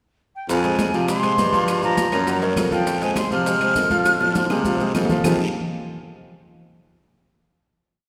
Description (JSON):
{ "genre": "latin, salsa", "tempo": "202 BPM", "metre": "4/4", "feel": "straight", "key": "F minor", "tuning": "A4 = 442 Hz", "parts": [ { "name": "jazz flute", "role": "melody", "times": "0.4-4.9 s", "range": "G5 to F6", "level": "-25 LUFS", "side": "equal", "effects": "none" }, { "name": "warm grand piano", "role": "accompaniment", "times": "0.5-5.4 s", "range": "F3 to Gb5", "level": "-26 LUFS", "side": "equal", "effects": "none" }, { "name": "breathy baritone saxophone", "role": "bass", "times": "0.5-5.4 s", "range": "F2 to C3", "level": "-26 LUFS", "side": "equal", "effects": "none" }, { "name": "bongos", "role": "percussion", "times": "0.5-5.3 s", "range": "none", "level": "-33 LUFS", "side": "equal", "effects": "none" }, { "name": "congas", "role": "percussion", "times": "0.5-5.3 s", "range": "none", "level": "-30 LUFS", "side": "equal", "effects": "none" }, { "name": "guiro", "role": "percussion", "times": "0.5-5.3 s", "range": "none", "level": "-40 LUFS", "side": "equal", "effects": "none" }, { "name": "maracas", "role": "percussion", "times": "0.5-5.3 s", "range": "none", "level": "-39 LUFS", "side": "equal", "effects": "none" }, { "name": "timbales", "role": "percussion", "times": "0.6-5.3 s", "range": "none", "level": "-34 LUFS", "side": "equal", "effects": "none" }, { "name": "claves", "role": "percussion", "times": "0.8-5.3 s", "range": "none", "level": "-40 LUFS", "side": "equal", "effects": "none" } ], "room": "wet concert hall reverb, RT60 2.2 s", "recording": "recorded in a church or concert hall", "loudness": "-20 LUFS", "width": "mono", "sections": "0.0-0.5 pickup bar; 0.5-5.2 A section; 5.2-6.4 final chord", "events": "drum fill 4.1-5.2", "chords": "0.5 Fmadd9; 1.7 Gm7; 2.3 Gb; 2.9 Fm; 5.2 Fm9", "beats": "0.20 | 0.49 0.79 1.09 1.38 | 1.68 1.98 2.27 2.57 | 2.86 3.16 3.46 3.76 | 4.05 4.35 4.65 4.95 | 5.25" }